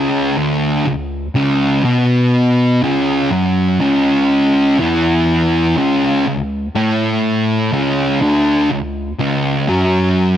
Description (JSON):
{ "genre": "metal", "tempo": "61 BPM", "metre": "4/4", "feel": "straight", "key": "unclear", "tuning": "A4 = 440 Hz", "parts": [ { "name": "thick fuzz guitar", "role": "solo", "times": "0.0-10.4 s", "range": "C#2 to B3", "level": "-13 LUFS", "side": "equal", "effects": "distortion" } ], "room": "little or no reverb", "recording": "none", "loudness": "-13 LUFS", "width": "side -10 dB against mid", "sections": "0.0-10.4 A section", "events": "none", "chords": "0.0 C#m", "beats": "0.86 | 1.85 2.83 3.81 4.79 | 5.77 6.75 7.73 8.71 | 9.68" }